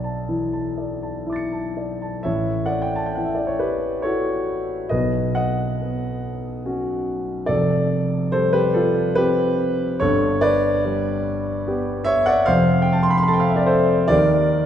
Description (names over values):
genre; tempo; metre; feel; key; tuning
classical, impressionist solo piano; 58-75 BPM; 3/4; rubato; A mixolydian; A4 = 440 Hz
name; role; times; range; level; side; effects
warm concert grand piano; solo; 0.0-14.7 s; F1 to C#7; -18 LUFS; equal; none
room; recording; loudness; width
wet scoring stage reverb, RT60 2.1 s; heard from further back in the room; -18 LUFS; side -9 dB against mid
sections
0.0-2.3 A section; 2.3-14.7 B section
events
none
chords
0.0 Bm11; 2.3 A6; 4.9 Badd9; 7.5 F69; 10.0 Gadd9; 12.5 F; 14.1 Ebmaj7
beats
0.29 1.27 | 2.26 3.17 4.04 | 4.92 5.80 6.65 | 7.49 8.34 9.19 | 10.03 10.85 11.67 | 12.48 13.29 14.11